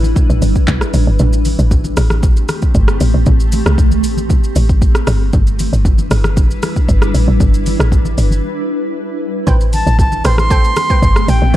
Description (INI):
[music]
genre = amapiano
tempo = 116 BPM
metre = 4/4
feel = straight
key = A minor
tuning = A4 = 440 Hz
[part]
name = granular cloud pad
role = sustained chords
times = 0.0-11.6 s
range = G3 to B4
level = -21 LUFS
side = equal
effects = built-in reverb, sidechain pumping
[part]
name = woody log drum bass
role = bass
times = 0.0-11.6 s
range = G1 to C2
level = -13 LUFS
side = equal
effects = none
[part]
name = deep house drum kit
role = drums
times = 0.0-11.6 s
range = handclaps, hi-hat, kick drum, rim click, shaker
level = -14 LUFS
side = equal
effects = none
[part]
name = congas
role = percussion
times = 0.0-10.9 s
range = none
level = -24 LUFS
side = left 2 dB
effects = none
[part]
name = analog pluck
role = stabs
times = 9.5-11.6 s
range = A4 to G5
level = -24 LUFS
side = right 4 dB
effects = chorus, tape echo
[part]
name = bright reedy silver concert flute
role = melody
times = 9.7-11.6 s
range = G5 to C6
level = -16 LUFS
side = right 1 dB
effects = tape echo
[sound]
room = digital ambience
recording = dark, warm production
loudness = -11 LUFS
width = side -14 dB against mid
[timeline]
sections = 0.0-11.6 A section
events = kick muted 1.2-1.7; break 8.4-9.5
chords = 0.0 G6; 1.2 Am7; 5.1 G6; 9.5 Am9